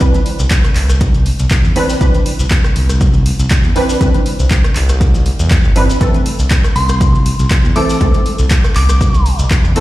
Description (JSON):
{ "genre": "deep house", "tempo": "120 BPM", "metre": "4/4", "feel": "swing 54% on 16ths", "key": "C major", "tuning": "A4 = 440 Hz", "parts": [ { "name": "filtered dub chord stab", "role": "stabs", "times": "0.0-9.8 s", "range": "E3 to B4", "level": "-18 LUFS", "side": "right 1 dB", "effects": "ensemble chorus, cassette tape, sidechain pumping, ping-pong delay" }, { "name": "smooth gliding synth bass", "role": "bass", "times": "0.0-9.7 s", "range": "G1 to E2", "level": "-14 LUFS", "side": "equal", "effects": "tube saturation, sidechain pumping" }, { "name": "electronic kick drum", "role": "drums", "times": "0.0-9.6 s", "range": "none", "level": "-12 LUFS", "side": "equal", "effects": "overdrive" }, { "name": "punchy analog drum machine", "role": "drums", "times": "0.0-9.8 s", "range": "handclaps, hi-hat, rim click", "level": "-22 LUFS", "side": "equal", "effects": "overdrive" }, { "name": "maracas", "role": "percussion", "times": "0.0-9.7 s", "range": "none", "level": "-29 LUFS", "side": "left 3 dB", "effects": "none" }, { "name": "congas", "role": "percussion", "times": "0.1-0.2, 4.1-8.2 s", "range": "none", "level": "-26 LUFS", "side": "left 1 dB", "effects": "overdrive" }, { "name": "glassy synth bell", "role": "melody", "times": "6.8-9.3 s", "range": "C6 to D6", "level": "-21 LUFS", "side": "left 1 dB", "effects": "chorus, ping-pong delay" } ], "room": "light reverb", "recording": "played on a big sound system in a bare room, large studio reverb", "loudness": "-10 LUFS", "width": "side -16 dB against mid", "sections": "0.0-9.8 A section", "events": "none", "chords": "0.0 Cmaj9; 6.0 Am/C" }